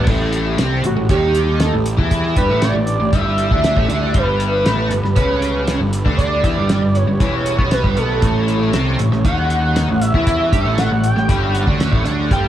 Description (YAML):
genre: psychedelic rock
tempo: 118 BPM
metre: 4/4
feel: straight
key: A mixolydian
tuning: A4 = 440 Hz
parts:
  - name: overdriven combo organ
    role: sustained chords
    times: 0.0-12.5 s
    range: G3 to C#5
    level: -29 LUFS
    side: right 6 dB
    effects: none
  - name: biting overdriven guitar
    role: riff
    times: 0.0-12.5 s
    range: E2 to G4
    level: -19 LUFS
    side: equal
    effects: rotary speaker
  - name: fuzz picked electric bass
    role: bass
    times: 0.0-12.5 s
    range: E1 to G2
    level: -20 LUFS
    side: equal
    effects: overdrive
  - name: cloth-damped thuddy drum kit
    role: drums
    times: 0.1-12.4 s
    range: crash cymbal, hi-hat, kick drum, snare drum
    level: -19 LUFS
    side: equal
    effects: none
  - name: octave-doubled lead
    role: melody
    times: 0.9-12.5 s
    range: F#4 to G5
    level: -21 LUFS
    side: right 1 dB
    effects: chorus, analog delay
room: light reverb, small room ambience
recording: small room reverb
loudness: -14 LUFS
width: side -11 dB against mid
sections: 0.1-12.5 A section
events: analog synth lead solo 0.1-12.5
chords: 0.1 A5; 4.2 Gadd9; 8.2 A7